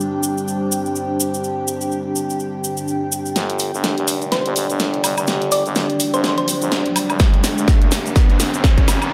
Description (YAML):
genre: bass house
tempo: 125 BPM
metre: 4/4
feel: swing 58% on 16ths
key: unclear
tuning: A4 = 438 Hz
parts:
  - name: dark analog pad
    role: sustained chords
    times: 0.0-9.1 s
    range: G3 to G5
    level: -26 LUFS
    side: equal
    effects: chorus, phaser, sidechain pumping
  - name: cabasa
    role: percussion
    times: 0.0-9.1 s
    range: none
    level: -27 LUFS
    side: equal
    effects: none
  - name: airy breathy pad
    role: texture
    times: 0.0-9.1 s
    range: D4 to G5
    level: -28 LUFS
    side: equal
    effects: chorus, sidechain pumping
  - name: growling FM bass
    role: bass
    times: 3.4-9.1 s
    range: F1 to G1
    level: -28 LUFS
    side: equal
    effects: overdrive, sidechain pumping, high-pass filter
  - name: big-room dance drum kit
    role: drums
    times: 3.4-9.1 s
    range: hi-hat, snare drum, woodblock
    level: -24 LUFS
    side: equal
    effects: high-pass filter on snare, high-pass filter on hats, high-pass filter on perc
  - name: riser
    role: sound effects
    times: 5.0-9.1 s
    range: none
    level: -29 LUFS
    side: equal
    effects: none
  - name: thumb-piano-like synth pluck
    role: melody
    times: 4.3-6.9 s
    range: C5 to D5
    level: -26 LUFS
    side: equal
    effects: chorus, tape echo
  - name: electronic kick drum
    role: drums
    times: 7.2-8.9 s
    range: none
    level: -16 LUFS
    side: equal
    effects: none
room: moderate plate reverb, RT60 2.3 s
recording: dreamy mix soaked in reverb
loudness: -19 LUFS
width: mono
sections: 0.0-3.4 A section; 3.4-9.1 B section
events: build-up 3.4-9.1; drum fill 3.4-9.1; riser 5.0-9.1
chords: 0.0 G5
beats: 0.00 0.48 0.96 | 1.44 1.92 2.40 2.88 | 3.36 3.84 4.32 4.80 | 5.28 5.76 6.24 6.72 | 7.20 7.68 8.16 8.64 | 9.12